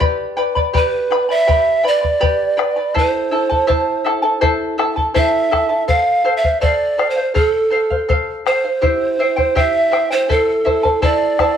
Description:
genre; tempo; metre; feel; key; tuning
andean folk, Andean ensemble; 82 BPM; 4/4; straight; A minor; A4 = 440 Hz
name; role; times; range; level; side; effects
charango; accompaniment; 0.0-11.6 s; E4 to B5; -18 LUFS; left 1 dB; none
bombo; percussion; 0.0-11.6 s; none; -20 LUFS; left 3 dB; none
breathy mellow pan flute; melody; 0.8-11.6 s; A4 to F5; -16 LUFS; right 3 dB; none
room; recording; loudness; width
moderate echo chamber reverb, RT60 1.3 s, small room ambience; 1960s-style stereo; -14 LUFS; side -8 dB against mid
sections
0.0-11.6 A section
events
none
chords
0.0 G; 3.0 Am; 5.9 F; 8.8 C; 10.3 Am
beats
| 0.02 0.75 1.49 2.22 | 2.95 3.69 4.42 5.15 | 5.89 6.62 7.36 8.09 | 8.82 9.56 10.29 11.03

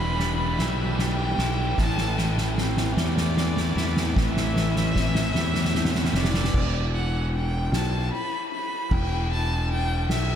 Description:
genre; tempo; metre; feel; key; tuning
post-rock; 50 BPM (dotted quarters); 6/8; straight; E minor; A4 = 438 Hz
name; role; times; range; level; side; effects
rich violin; melody; 0.0-10.4 s; D5 to B5; -30 LUFS; equal; tape echo
clean electric guitar; arpeggios; 0.0-6.5 s; A2 to E4; -32 LUFS; left 3 dB; wide subtle chorus, tape echo
distorted electric guitar; riff; 0.0-6.5 s; A2 to G3; -29 LUFS; equal; distortion
fuzz fingered electric bass; bass; 0.0-10.4 s; E1 to E2; -26 LUFS; equal; overdrive
soft-mallet drum kit; drums; 0.2-10.3 s; crash cymbal, kick drum, ride cymbal, snare drum; -28 LUFS; equal; none
room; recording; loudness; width
moderate lush hall reverb, RT60 2.8 s; dreamy mix soaked in reverb; -22 LUFS; side -9 dB against mid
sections
0.0-6.5 A section; 6.5-10.4 B section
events
build-up 0.0-6.5; drum fill 0.0-6.5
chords
0.0 Em7; 1.8 Am7; 6.5 E5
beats
0.60 | 1.78 2.97 | 4.16 5.35 | 6.54 7.73 | 8.91 10.10

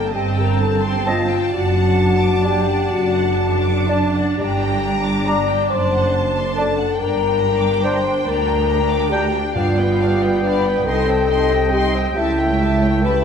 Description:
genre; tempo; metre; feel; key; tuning
classical, slow romantic movement for symphony orchestra; 39-48 BPM (dotted quarters); 6/8; rubato; G minor; A4 = 440 Hz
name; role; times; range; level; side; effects
rich studio violin section; melody; 0.0-13.2 s; F5 to C6; -29 LUFS; left 3 dB; none
mellow flute section; second line; 0.0-13.2 s; D5 to D6; -27 LUFS; equal; none
warm studio violin section; second line; 0.0-13.2 s; B4 to D6; -30 LUFS; left 1 dB; none
rich studio viola section; accompaniment; 0.0-13.2 s; G3 to Eb4; -27 LUFS; equal; none
mellow French horn section; sustained chords; 0.0-13.2 s; D4 to D5; -20 LUFS; left 4 dB; none
timpani; percussion; 0.0-0.1, 4.4-10.8 s; G2; -30 LUFS; equal; none
rich studio double bass section; bass; 0.1-13.2 s; F#1 to D2; -24 LUFS; right 4 dB; none
warm studio cello section; bass; 0.1-13.2 s; C2 to G2; -23 LUFS; right 3 dB; none
clear clarinet; second line; 1.1-13.2 s; D5 to E5; -31 LUFS; left 1 dB; none
warm oboe; second line; 1.1-13.2 s; G5 to Bb5; -28 LUFS; right 1 dB; none
warm bassoon; accompaniment; 1.1-13.2 s; A3 to D4; -28 LUFS; right 2 dB; none
room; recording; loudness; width
wet scoring stage reverb, RT60 1.7 s; none; -15 LUFS; side -7 dB against mid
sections
0.0-13.2 A section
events
none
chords
0.1 Am7b5/G; 1.5 D/F#; 4.4 Gm; 5.7 D7/F#; 7.0 Gm; 9.6 G7; 10.9 Cm; 12.2 A7/C#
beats
0.13 | 1.54 2.91 | 4.38 5.71 | 7.00 8.25 | 9.55 10.86 | 12.16

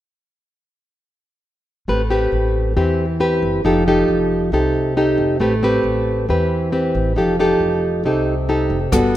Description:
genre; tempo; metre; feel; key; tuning
bossa nova; 136 BPM; 4/4; straight; unclear; A4 = 437 Hz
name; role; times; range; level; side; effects
nylon-string guitar; accompaniment; 1.9-9.2 s; C3 to B4; -16 LUFS; equal; none
upright bass; bass; 1.9-9.2 s; F1 to E2; -23 LUFS; equal; none
compact cocktail drum kit; drums; 8.9-9.0 s; hi-hat, kick drum, rim click; -21 LUFS; equal; none
room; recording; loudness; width
light reverb, small room ambience; rough home demo mix; -15 LUFS; side -13 dB against mid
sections
1.9-8.9 A section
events
none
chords
1.9 Am9; 3.6 F9; 5.4 Am9; 7.2 F9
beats
| 1.88 2.32 2.76 3.20 | 3.64 4.08 4.52 4.96 | 5.40 5.84 6.28 6.72 | 7.16 7.60 8.04 8.48 | 8.93

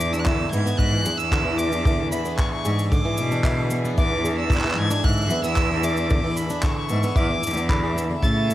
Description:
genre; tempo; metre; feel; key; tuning
folktronica; 113 BPM; 4/4; straight; E mixolydian; A4 = 440 Hz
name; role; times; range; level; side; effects
bright violin; melody; 0.0-8.5 s; B5 to A6; -27 LUFS; equal; tape echo
warm string quartet; sustained chords; 0.0-8.5 s; E3 to C#5; -33 LUFS; equal; vintage 12-bit sampler grit
fingerpicked plugged-in swing-style acoustic guitar; arpeggios; 0.0-8.5 s; C#3 to G#4; -28 LUFS; right 1 dB; tape echo
clear cello; bass; 0.0-8.5 s; E2 to B2; -24 LUFS; equal; none
soft brush drum kit; drums; 0.0-8.5 s; cabasa, handclaps, hi-hat; -33 LUFS; equal; none
backwards swelling texture; texture; 1.1-8.5 s; E5; -36 LUFS; right 6 dB; built-in reverb
celesta; second line; 0.3-8.2 s; E5 to B5; -35 LUFS; left 2 dB; tape echo
kick drum; drums; 0.3-8.3 s; none; -23 LUFS; equal; none
room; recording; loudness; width
small room ambience; none; -19 LUFS; side -14 dB against mid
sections
0.0-8.5 A section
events
none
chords
0.0 E7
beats
0.26 0.79 1.32 | 1.85 2.39 2.92 3.45 | 3.98 4.51 5.04 5.57 | 6.10 6.63 7.17 7.70 | 8.23

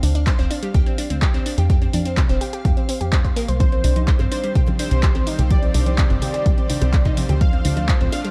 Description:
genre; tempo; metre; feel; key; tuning
progressive house; 126 BPM; 4/4; straight; C dorian; A4 = 440 Hz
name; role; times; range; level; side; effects
analog pluck; arpeggios; 0.0-8.3 s; C3 to C5; -29 LUFS; equal; chorus, sidechain pumping, tape echo
plucky analog bass; bass; 0.0-8.1 s; D1 to F2; -23 LUFS; equal; sidechain pumping
deep house drum kit; drums; 0.0-8.3 s; handclaps, hi-hat; -32 LUFS; equal; overdrive, small room reverb
backwards swelling texture; texture; 0.0-8.3 s; F5; -44 LUFS; equal; none
electronic kick drum; drums; 0.3-8.0 s; none; -21 LUFS; equal; overdrive, small room reverb
plucky unison lead; melody; 3.6-8.3 s; C5 to F5; -31 LUFS; equal; analog chorus
supersaw pad; sustained chords; 3.6-8.3 s; Eb3 to C5; -34 LUFS; equal; sidechain pumping
congas and bongos; percussion; 3.6-8.2 s; none; -32 LUFS; equal; sidechain pumping on perc
room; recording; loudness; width
digital ambience; dark, warm production; -19 LUFS; mono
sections
0.0-8.3 A section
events
none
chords
0.0 Dm7; 1.7 F5; 3.6 Cm; 7.4 Dm7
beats
0.27 0.74 1.22 | 1.70 2.17 2.65 3.13 | 3.60 4.08 4.55 5.03 | 5.51 5.98 6.46 6.93 | 7.41 7.89

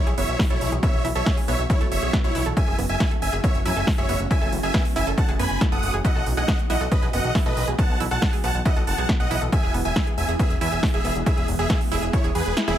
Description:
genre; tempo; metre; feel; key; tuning
uplifting trance; 138 BPM; 4/4; straight; unclear; A4 = 439 Hz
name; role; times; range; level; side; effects
big supersaw lead; melody; 0.0-12.8 s; E4 to D#6; -26 LUFS; right 1 dB; sidechain pumping, tape echo
shimmering ambient pad; sustained chords; 0.0-12.8 s; E3 to G#4; -32 LUFS; right 2 dB; chorus, built-in reverb, sidechain pumping
analog pluck; arpeggios; 0.1-12.7 s; B3 to A4; -31 LUFS; right 4 dB; chorus, sidechain pumping, tape echo
fat analog bass; bass; 0.1-12.7 s; E1 to F#2; -26 LUFS; equal; sidechain pumping
big-room dance drum kit; drums; 0.1-12.8 s; hi-hat, snare drum; -29 LUFS; equal; overdrive
electronic kick drum; drums; 0.4-12.2 s; none; -22 LUFS; equal; overdrive
room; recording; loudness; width
little or no reverb; none; -20 LUFS; side -11 dB against mid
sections
0.0-12.8 A section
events
kick drops out 12.6; band accent 12.6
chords
0.0 F#m7; 6.0 Bsus4; 9.5 E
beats
0.39 | 0.83 1.26 1.70 2.13 | 2.57 3.00 3.44 3.87 | 4.31 4.74 5.18 5.61 | 6.05 6.48 6.92 7.35 | 7.79 8.22 8.65 9.09 | 9.53 9.96 10.39 10.83 | 11.26 11.70 12.13 12.57

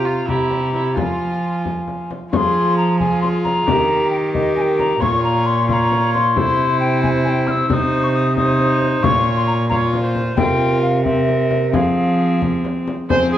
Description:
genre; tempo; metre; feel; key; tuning
classical, renaissance-style consort dance; 89 BPM (dotted quarters); 6/8; straight; F minor; A4 = 439 Hz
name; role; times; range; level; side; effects
mellow hollow alto recorder; melody; 0.0-13.4 s; Eb5 to F6; -21 LUFS; left 3 dB; none
rich viola; second line; 0.0-13.4 s; E4 to Db5; -23 LUFS; right 4 dB; none
rich viola; accompaniment; 0.0-13.4 s; C4 to G4; -22 LUFS; left 2 dB; none
rich cello; bass; 0.0-13.4 s; Bb2 to F3; -20 LUFS; right 1 dB; none
frame drum; percussion; 0.3-13.3 s; none; -24 LUFS; left 4 dB; none
room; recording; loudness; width
moderate recital hall reverb, RT60 1.4 s; worn, warbling old tape, cassette tape, warbly pitch drift; -15 LUFS; side -11 dB against mid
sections
0.0-2.3 A section; 2.3-13.1 A section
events
none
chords
0.3 C7; 1.0 Fm; 3.7 Eb; 5.0 Bbm; 6.4 C; 7.7 Cm; 9.0 Bbm; 10.4 C7sus4; 11.1 C7; 11.7 Fm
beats
0.28 | 0.96 1.64 | 2.32 3.00 | 3.67 4.34 | 5.01 5.69 | 6.36 7.03 | 7.70 8.37 | 9.04 9.71 | 10.38 11.05 | 11.73 12.42 | 13.10

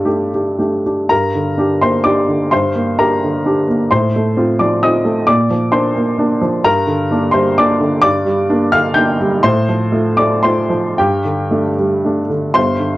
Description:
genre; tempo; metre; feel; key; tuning
neoclassical minimalist piano; 108-134 BPM; 3/4; rubato; G minor; A4 = 440 Hz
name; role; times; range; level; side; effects
warm upright piano; solo; 0.0-13.0 s; G1 to G6; -12 LUFS; equal; none
room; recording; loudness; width
wet small room reverb, RT60 0.5 s; worn, warbling old tape, cassette tape, warbly pitch drift; -12 LUFS; side -17 dB against mid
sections
0.0-1.1 A section; 1.1-12.6 B section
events
none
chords
0.0 Gsus2; 1.1 Gm; 3.9 F/A; 5.3 Bb; 6.6 Gm; 9.4 F/A; 11.0 Gsus2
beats
0.07 0.59 | 1.10 1.59 2.05 | 2.51 2.98 3.44 | 3.90 4.36 4.82 | 5.27 5.72 6.18 | 6.65 7.10 7.57 | 8.03 8.50 8.96 | 9.45 9.92 10.43 | 10.96 11.51 12.05 | 12.56

